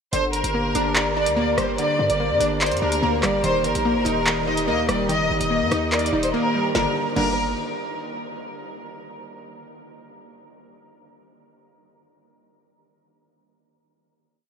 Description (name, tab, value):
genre	hip hop, drill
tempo	145 BPM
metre	4/4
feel	half-time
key	G minor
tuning	A4 = 445 Hz
part	warm symphonic violin section	melody	0.1-7.4 s	Bb4 to Eb5	-23 LUFS	equal	ping-pong delay
part	glassy wavetable pluck	accompaniment	0.1-7.4 s	D3 to Eb5	-26 LUFS	equal	chorus
part	airy breathy pad	sustained chords	0.1-6.9 s	D3 to Bb4	-29 LUFS	left 1 dB	chorus
part	hard-hitting 808-style bass	bass	0.1-7.5 s	Eb1 to G2	-29 LUFS	equal	none
part	drill drum kit	drums	0.1-7.3 s	crash cymbal, handclaps, hi-hat, rim click, snare drum	-28 LUFS	equal	none
room	wet huge ambient reverb, RT60 8.0 s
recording	dreamy mix soaked in reverb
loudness	-19 LUFS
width	side -6 dB against mid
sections	0.1-6.7 hook; 6.7-8.4 final chord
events	drums muted 6.3-6.7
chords	0.1 Gm; 3.4 Eb; 6.7 Gm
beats	| 0.13 0.54 0.96 1.37 | 1.78 2.20 2.61 3.02 | 3.44 3.85 4.27 4.68 | 5.09 5.51 5.92 6.34 | 6.75 7.16